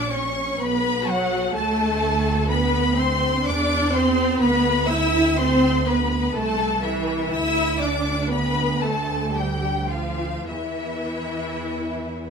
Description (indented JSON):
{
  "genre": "classical, slow romantic movement for string orchestra",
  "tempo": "51-64 BPM",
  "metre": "3/4",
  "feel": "rubato",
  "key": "unclear",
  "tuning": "A4 = 436 Hz",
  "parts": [
    { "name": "rich symphonic violin section", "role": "melody", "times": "0.0-12.3 s", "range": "E5 to E6", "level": "-26 LUFS", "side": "left 3 dB", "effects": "none" },
    { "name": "clear symphonic violin section", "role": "second line", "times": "0.0-12.3 s", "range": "E4 to E5", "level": "-28 LUFS", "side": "left 4 dB", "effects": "none" },
    { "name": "warm symphonic viola section", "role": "accompaniment", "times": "0.0-12.3 s", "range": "E3 to E4", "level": "-25 LUFS", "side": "equal", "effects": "none" },
    { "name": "rich studio cello section", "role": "bass", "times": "0.0-12.3 s", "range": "E3 to E4", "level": "-28 LUFS", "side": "right 4 dB", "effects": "none" },
    { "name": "rich symphonic double bass section", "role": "bass", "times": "0.0-12.3 s", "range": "A#1 to E2", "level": "-26 LUFS", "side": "right 2 dB", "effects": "none" }
  ],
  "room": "moderate recital hall reverb, RT60 1.6 s",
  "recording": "none",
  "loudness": "-20 LUFS",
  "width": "side -6 dB against mid",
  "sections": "0.0-12.3 A section",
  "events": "none",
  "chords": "0.0 F#/A# (rootless); 0.6 B5; 1.6 Bm7/D; 3.5 Cadd9/E; 4.4 E5/D; 6.4 Am/C; 7.3 Bdim/D; 10.5 N.C."
}